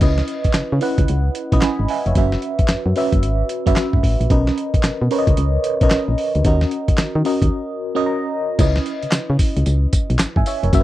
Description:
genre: R&B, new jack swing.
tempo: 112 BPM.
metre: 4/4.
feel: swing 63% on 16ths.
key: C# dorian.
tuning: A4 = 440 Hz.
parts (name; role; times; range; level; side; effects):
FM electric piano with auto-pan; accompaniment; 0.0-10.8 s; C#4 to B5; -21 LUFS; right 1 dB; phaser.
solid FM bass; bass; 0.0-10.8 s; E#1 to D#3; -18 LUFS; equal; none.
dusty soul sampler-style drum kit; drums; 0.0-10.8 s; crash cymbal, handclaps, hi-hat, kick drum, snare drum, tambourine; -18 LUFS; equal; none.
room: little or no reverb.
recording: dry, close 1970s-style studio recording.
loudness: -16 LUFS.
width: side -15 dB against mid.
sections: 0.0-8.6 A section; 8.6-10.8 B section.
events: break 7.5-8.6; FM electric piano fill 7.8-8.6.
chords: 0.0 C#m9; 2.2 F#7sus4; 4.3 Bmaj9; 6.4 D#m7; 8.6 C#m9.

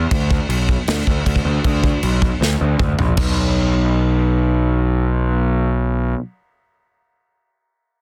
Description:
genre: heavy metal.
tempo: 156 BPM.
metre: 4/4.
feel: straight.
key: B minor.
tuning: A4 = 439 Hz.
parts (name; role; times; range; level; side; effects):
fuzz picked electric bass; bass; 0.0-6.1 s; A#1 to D2; -19 LUFS; equal; overdrive.
modern studio drum kit; drums; 0.1-3.3 s; crash cymbal, kick drum, snare drum, toms; -22 LUFS; equal; none.
room: little or no reverb.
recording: dense, heavily limited modern master.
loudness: -18 LUFS.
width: mono.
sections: 0.0-3.2 A section; 3.2-6.3 B section.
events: drum fill 2.4-3.2.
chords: none.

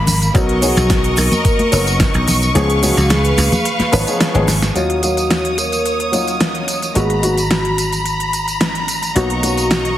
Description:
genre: nu-disco, nu disco.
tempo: 109 BPM.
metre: 4/4.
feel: straight.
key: Eb minor.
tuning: A4 = 440 Hz.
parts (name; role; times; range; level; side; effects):
bright symphonic violin section; sustained chords; 0.0-10.0 s; Bb3 to Eb6; -21 LUFS; equal; sidechain pumping.
dry thumbed slap bass; bass; 0.0-10.0 s; F#1 to Eb2; -18 LUFS; equal; sidechain pumping.
pop drum kit; drums; 0.1-10.0 s; hi-hat, snare drum, tambourine; -20 LUFS; equal; small room reverb.
congas and tube shaker; percussion; 0.1-4.7 s; none; -22 LUFS; equal; none.
dark baby grand piano; accompaniment; 0.3-10.0 s; F3 to F5; -21 LUFS; left 2 dB; vintage 12-bit sampler grit.
electronic kick drum; drums; 0.3-2.1 s; none; -16 LUFS; equal; small room reverb.
soft octave-layered synth lead; melody; 0.4-9.9 s; F#4 to A#4; -21 LUFS; equal; chorus, dub echo.
room: moderate plate reverb, RT60 1.7 s, small room ambience.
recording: heavily compressed radio sound.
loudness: -13 LUFS.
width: side -12 dB against mid.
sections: 0.0-4.8 A section; 4.8-10.0 B section.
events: kick drops out 2.6-4.8; drum fill 4.5.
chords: 0.3 Bmaj9; 2.6 Db7; 4.8 Ebm7; 7.0 Abm9; 9.2 Bmaj9.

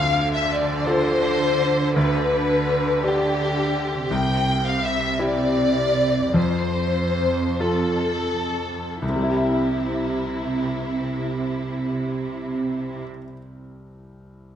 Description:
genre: cinematic, emotional film score for orchestra.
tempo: 41-56 BPM (dotted quarters).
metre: 6/8.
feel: rubato.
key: C major.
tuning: A4 = 440 Hz.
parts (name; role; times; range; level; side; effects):
dark symphonic violin section; melody; 0.0-13.0 s; E4 to G5; -24 LUFS; left 3 dB; none.
bright grand piano; accompaniment; 0.0-14.6 s; C2 to E5; -25 LUFS; left 1 dB; none.
rich symphonic cello section; bass; 0.0-13.0 s; F2 to D3; -25 LUFS; right 4 dB; none.
room: moderate scoring stage reverb, RT60 1.9 s.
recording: none.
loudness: -20 LUFS.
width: side -9 dB against mid.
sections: 0.0-9.0 A section; 9.0-14.6 B section.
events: slowing down 3.0-9.0.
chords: 0.0 Dm; 2.0 G/D; 4.1 C; 6.4 F; 9.0 C.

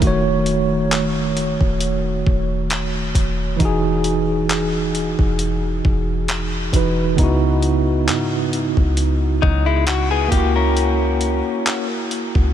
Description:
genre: contemporary R&B.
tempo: 67 BPM.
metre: 4/4.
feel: swing 54% on 16ths.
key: E major.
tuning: A4 = 441 Hz.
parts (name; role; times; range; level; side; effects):
tine electric piano; accompaniment; 0.0-12.5 s; C#3 to C#5; -20 LUFS; right 2 dB; medium stereo tremolo.
soft 808-style bass; bass; 0.0-12.5 s; D#1 to G#2; -22 LUFS; equal; none.
dusty soul sampler-style drum kit; drums; 0.0-12.5 s; handclaps, hi-hat, kick drum; -22 LUFS; equal; none.
direct-recorded clean electric guitar; arpeggios; 9.4-11.9 s; F#3 to A#4; -21 LUFS; left 8 dB; ping-pong delay.
room: light reverb.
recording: none.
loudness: -16 LUFS.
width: side -10 dB against mid.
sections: 0.0-12.5 A section.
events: none.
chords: 0.0 D#m7b5; 3.6 Emaj9; 7.2 C#m11; 10.3 F#7.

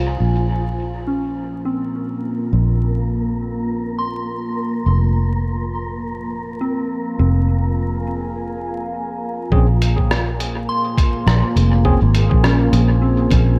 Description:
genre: ambient dub.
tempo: 103 BPM.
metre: 4/4.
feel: swing 58% on 16ths.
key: unclear.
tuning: A4 = 440 Hz.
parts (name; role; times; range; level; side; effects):
deep dark ambient pad; sustained chords; 0.0-13.6 s; Bb3 to Ab5; -27 LUFS; equal; chorus, built-in reverb, vintage 12-bit sampler grit.
soft synth bell; arpeggios; 0.0-13.6 s; C4 to C6; -28 LUFS; equal; chorus, low-pass filter, tape echo.
fingered electric bass; bass; 0.0-13.6 s; F1 to C2; -19 LUFS; equal; none.
wind-like tuned noise texture; texture; 1.5-13.6 s; Ab3 to Bb4; -32 LUFS; equal; built-in reverb.
tine electric piano; stabs; 9.5-12.0 s; C4 to Ab4; -31 LUFS; equal; dub echo.
electronic kick drum; drums; 9.5-13.4 s; none; -19 LUFS; equal; none.
lo-fi sampler-style drum kit; drums; 9.8-13.4 s; hi-hat, rim click; -28 LUFS; equal; dub echo.
room: light reverb.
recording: vinyl crackle.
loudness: -19 LUFS.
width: mono.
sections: 0.2-9.5 A section; 9.5-13.6 B section.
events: filter sweep on ambient pad 0.2-9.5; filter sweep on synth bell 0.2-9.5.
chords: 0.2 Bbm9; 4.9 Fm; 9.5 Bbm9.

